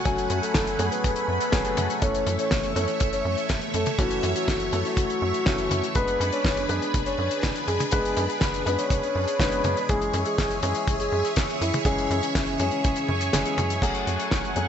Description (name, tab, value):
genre	italo disco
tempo	122 BPM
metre	4/4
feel	straight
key	F# minor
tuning	A4 = 439 Hz
part	soft octave-layered synth lead	melody	0.0-13.7 s	C#4 to C#5	-29 LUFS	left 2 dB	chorus, tremolo, ping-pong delay
part	string machine, full ensemble	sustained chords	0.0-14.7 s	A3 to C#6	-29 LUFS	right 1 dB	phaser, ensemble chorus
part	dark grand piano	stabs	0.0-14.7 s	E3 to G#5	-30 LUFS	left 2 dB	none
part	tight sequencer bass	bass	0.1-14.7 s	F#1 to F#2	-30 LUFS	equal	none
part	damped 70s drum kit	drums	0.1-14.7 s	crash cymbal, hi-hat, snare drum, toms	-29 LUFS	left 1 dB	studio ambience, gated reverb
part	kick drum	drums	0.1-14.4 s	none	-26 LUFS	right 1 dB	studio ambience
room	light reverb, small room ambience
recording	nothing above 8.0 kHz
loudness	-22 LUFS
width	side -8 dB against mid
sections	0.0-13.8 A section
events	kick drops out 13.3-13.8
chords	0.0 F#madd9; 2.0 A/F#; 6.0 G#dim/F#; 9.9 C#m/F#; 13.8 F#madd9